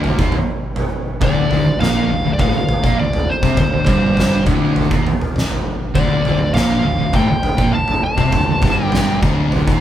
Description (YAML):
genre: stoner and doom metal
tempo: 101 BPM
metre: 4/4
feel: straight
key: D minor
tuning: A4 = 441 Hz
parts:
  - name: thick fuzz guitar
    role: riff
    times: 0.0-9.8 s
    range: D2 to C4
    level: -22 LUFS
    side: left 5 dB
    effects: distortion
  - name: thick fuzz guitar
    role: riff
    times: 0.0-9.8 s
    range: D2 to C4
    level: -20 LUFS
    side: right 2 dB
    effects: distortion
  - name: fuzz picked electric bass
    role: bass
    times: 0.0-9.8 s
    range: D1 to C2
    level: -23 LUFS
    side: equal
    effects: none
  - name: oversized low-tuned drum kit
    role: drums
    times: 0.0-9.8 s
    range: kick drum, snare drum, toms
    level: -18 LUFS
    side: equal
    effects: none
  - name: fuzz lead guitar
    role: melody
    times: 1.2-9.2 s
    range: C5 to A5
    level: -21 LUFS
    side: equal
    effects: distortion
room: moderate large studio reverb, RT60 1.0 s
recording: band playing live in one room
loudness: -14 LUFS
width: side -11 dB against mid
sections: 0.0-9.8 A section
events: none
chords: 0.0 D5